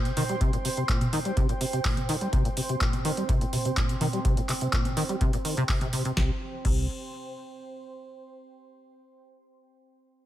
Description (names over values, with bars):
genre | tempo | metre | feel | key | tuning
acid house | 125 BPM | 4/4 | straight | unclear | A4 = 440 Hz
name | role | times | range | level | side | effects
acid bass, saw | riff | 0.0-6.9 s | Bb2 to G3 | -29 LUFS | equal | wide subtle chorus, sidechain pumping, tape echo
deep dark ambient pad | texture | 0.0-8.0 s | C5 to C6 | -36 LUFS | right 3 dB | chorus, built-in reverb, sidechain pumping
booming analog drum machine | drums | 0.1-6.7 s | crash cymbal, handclaps, hi-hat, snare drum, toms | -31 LUFS | right 1 dB | none
electronic kick drum | drums | 0.4-6.7 s | none | -27 LUFS | equal | none
round analog bass | bass | 6.2-6.9 s | C2 | -30 LUFS | equal | sidechain pumping
room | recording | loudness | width
light reverb, digital ambience | none | -24 LUFS | side -13 dB against mid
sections
0.0-6.2 A section; 6.2-8.1 B section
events
none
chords
0.0 C5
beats
| 0.41 0.89 1.37 1.85 | 2.33 2.81 3.29 3.77 | 4.25 4.73 5.21 5.69 | 6.17 6.65 7.13 7.61